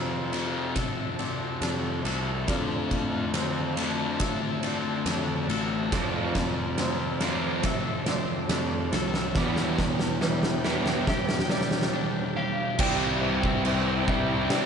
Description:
post-rock; 70 BPM; 4/4; straight; F lydian; A4 = 436 Hz
dark symphonic string section; sustained chords; 0.0-14.7 s; E3 to A5; -37 LUFS; left 1 dB
felt-muted upright piano; arpeggios; 0.0-14.7 s; B4 to E5; -40 LUFS; right 3 dB; ensemble chorus, diffuse ambient delay
twangy electric guitar; arpeggios; 0.0-14.7 s; E2 to A4; -36 LUFS; left 2 dB; diffuse ambient delay
thick fuzz guitar; riff; 0.0-14.7 s; E2 to D4; -31 LUFS; left 6 dB; distortion
fuzz picked electric bass; bass; 0.0-14.5 s; A1 to F2; -31 LUFS; right 1 dB; overdrive
oversized low-tuned drum kit; drums; 0.3-14.7 s; crash cymbal, kick drum, ride cymbal, snare drum; -29 LUFS; right 1 dB
crunchy overdriven guitar; riff; 5.9-14.7 s; C3 to E4; -32 LUFS; right 8 dB
clean lap steel guitar; melody; 12.4-14.7 s; D5 to G5; -33 LUFS; right 1 dB; lush chorus, diffuse ambient delay
wet lush hall reverb, RT60 2.4 s; dreamy mix soaked in reverb, nothing above 10.8 kHz; -24 LUFS; side -7 dB against mid
0.0-12.8 A section; 12.8-14.7 B section
build-up 0.0-12.8; drum fill 0.0-11.9; break 11.9-12.8
0.0 F6; 2.5 Dm7/F; 5.9 F6; 9.4 Em7; 12.8 Cadd9

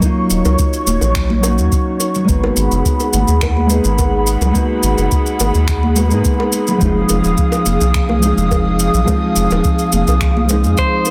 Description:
sunset chillout; 106 BPM; 4/4; straight; A4 = 440 Hz
nylon-string guitar; accompaniment; 0.0-11.1 s; F3 to Ab4; -20 LUFS; equal; digital delay
airy breathy pad; sustained chords; 0.0-11.1 s; Gb3 to Eb6; -23 LUFS; equal; chorus
electronic kick drum; drums; 0.0-10.9 s; -20 LUFS; equal
electronic shaker and finger snaps; drums; 0.0-11.1 s; -25 LUFS; equal; soft clipping on snare
bongos and congas; percussion; 0.0-11.1 s; -25 LUFS; equal
round analog bass; bass; 0.3-10.8 s; Eb1 to Ab2; -18 LUFS; equal; tube saturation
clean electric guitar; melody; 10.8-11.1 s; C5; -18 LUFS; equal; spring reverb
light reverb, digital ambience; dense, heavily limited modern master; -15 LUFS; mono
0.0-11.1 A section
0.0 Ebm7; 2.3 Abm7; 6.8 Fm7

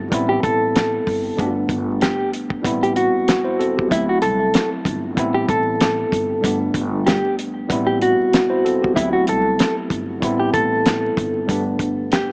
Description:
hip hop, boom-bap hip-hop; 95 BPM; 4/4; swing 56% on 16ths; A dorian; A4 = 440 Hz
tine electric piano; accompaniment; 0.0-12.3 s; D2 to C5; -25 LUFS; equal; cassette tape, high-pass filter, low-pass filter
upright bass; bass; 0.0-12.2 s; G1 to D2; -29 LUFS; equal
cloth-damped thuddy drum kit; drums; 0.1-12.3 s; hi-hat, kick drum, snare drum; -23 LUFS; equal
mellow electric guitar; melody; 0.3-12.3 s; E4 to A4; -23 LUFS; equal; tremolo, high-pass filter, low-pass filter, cassette tape, tape echo
light reverb; home recording on cassette, vinyl crackle, small speaker sound; -19 LUFS; mono
0.0-12.3 A section
0.1 Am7; 1.4 Gadd9; 2.6 Am7; 3.9 D7; 5.2 Am7; 6.4 Gadd9; 7.7 Am7; 9.0 D7; 10.2 Am7; 11.5 Gadd9

